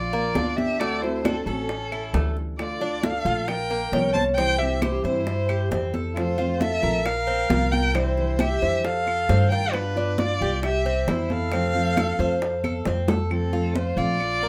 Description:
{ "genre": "latin, Cuban son and guajira", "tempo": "134 BPM", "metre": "4/4", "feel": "straight", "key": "F major", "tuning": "A4 = 440 Hz", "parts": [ { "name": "warm violin", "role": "melody", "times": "0.0-14.5 s", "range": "A4 to A5", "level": "-29 LUFS", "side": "equal", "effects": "none" }, { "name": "warm trumpet", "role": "second line", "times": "0.0-14.5 s", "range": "C4 to C5", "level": "-36 LUFS", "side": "equal", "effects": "none" }, { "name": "Cuban tres", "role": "arpeggios", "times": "0.0-14.5 s", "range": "A3 to C5", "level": "-31 LUFS", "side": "equal", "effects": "none" }, { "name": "upright bass", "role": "bass", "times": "0.0-14.5 s", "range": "A1 to G2", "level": "-29 LUFS", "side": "equal", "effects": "none" }, { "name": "congas", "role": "percussion", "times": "0.1-14.5 s", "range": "none", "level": "-31 LUFS", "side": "equal", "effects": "none" }, { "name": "nylon-string guitar", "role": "accompaniment", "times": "0.4-14.2 s", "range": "C3 to F#4", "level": "-33 LUFS", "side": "equal", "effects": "none" }, { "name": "bongos", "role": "percussion", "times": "0.4-13.2 s", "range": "none", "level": "-34 LUFS", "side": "equal", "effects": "none" }, { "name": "claves", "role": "percussion", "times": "0.8-14.4 s", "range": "none", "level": "-39 LUFS", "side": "equal", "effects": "none" } ], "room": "moderate studio reverb, RT60 0.5 s", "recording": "none", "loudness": "-24 LUFS", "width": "mono", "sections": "0.0-13.3 A section; 13.3-14.5 A section", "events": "drum fill 12.6-13.3", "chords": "0.0 Bb; 0.8 D7; 1.7 A7; 2.6 Dm; 3.5 Bbm; 4.4 C; 6.2 F; 7.1 Bbsus2; 8.0 Cadd9; 8.8 F7; 9.7 G7; 10.6 C; 11.5 F", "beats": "0.36 | 0.80 1.25 1.70 2.14 | 2.59 3.03 3.48 3.93 | 4.37 4.82 5.27 5.71 | 6.16 6.61 7.06 7.50 | 7.95 8.40 8.85 9.29 | 9.74 10.19 10.63 11.08 | 11.52 11.97 12.41 12.86 | 13.30 13.75 14.20" }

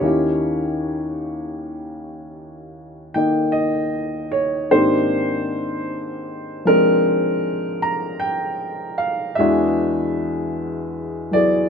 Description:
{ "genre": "jazz ballad", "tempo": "51 BPM", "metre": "4/4", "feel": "swing 67% on 8ths", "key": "unclear", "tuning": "A4 = 441 Hz", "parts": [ { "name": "warm upright piano", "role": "solo", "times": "0.0-11.7 s", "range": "Eb2 to Bb5", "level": "-18 LUFS", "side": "equal", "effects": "none" } ], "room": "light reverb", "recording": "close, detailed microphones", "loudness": "-18 LUFS", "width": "side -6 dB against mid", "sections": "0.0-11.7 A section", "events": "none", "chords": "0.0 Eb7b9; 4.7 Abmaj9#11; 9.4 E9", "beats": "| 0.04 1.20 2.37 3.54 | 4.72 5.89 7.06 8.22 | 9.39 10.55" }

